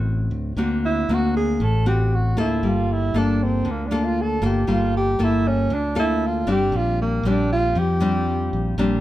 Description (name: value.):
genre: bossa nova.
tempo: 117 BPM.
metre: 4/4.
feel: straight.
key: unclear.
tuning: A4 = 436 Hz.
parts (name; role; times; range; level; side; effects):
nylon-string guitar; accompaniment; 0.0-9.0 s; A2 to A4; -22 LUFS; left 2 dB; none.
modern bright fingered electric bass; bass; 0.0-9.0 s; G1 to F2; -24 LUFS; right 1 dB; none.
breathy alto saxophone; melody; 0.9-8.8 s; Bb3 to A4; -24 LUFS; right 2 dB; none.
room: light reverb.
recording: band playing live in one room.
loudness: -18 LUFS.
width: side -14 dB against mid.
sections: 0.0-9.0 A section.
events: alto saxophone solo 0.0-9.0.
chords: 0.0 D7b13; 2.6 Gm9; 6.7 Bb69.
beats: 0.06 | 0.57 1.09 1.60 2.11 | 2.63 3.14 3.65 4.17 | 4.68 5.19 5.71 6.22 | 6.73 7.25 7.76 8.27 | 8.79.